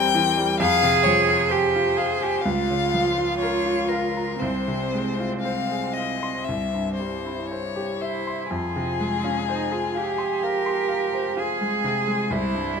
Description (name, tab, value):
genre	classical, slow romantic movement for piano trio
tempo	58-66 BPM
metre	4/4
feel	rubato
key	F minor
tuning	A4 = 441 Hz
part	rich violin	melody	0.0-12.8 s	Ab4 to G5	-26 LUFS	left 10 dB	none
part	rich cello	second line	0.0-12.8 s	C4 to Ab4	-24 LUFS	right 5 dB	none
part	bright concert grand piano	accompaniment	0.0-12.8 s	C2 to C6	-26 LUFS	equal	none
room	moderate recital hall reverb, RT60 1.6 s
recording	close, detailed microphones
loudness	-21 LUFS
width	side -6 dB against mid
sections	0.0-12.8 A section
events	none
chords	0.0 C7/E; 0.6 Fm; 2.4 Bbm/Db; 4.4 Fm/C; 6.5 C; 8.5 Fm; 12.3 C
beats	| 0.58 1.50 2.43 3.40 | 4.41 5.43 6.47 7.49 | 8.50 9.46 10.42 11.36 | 12.30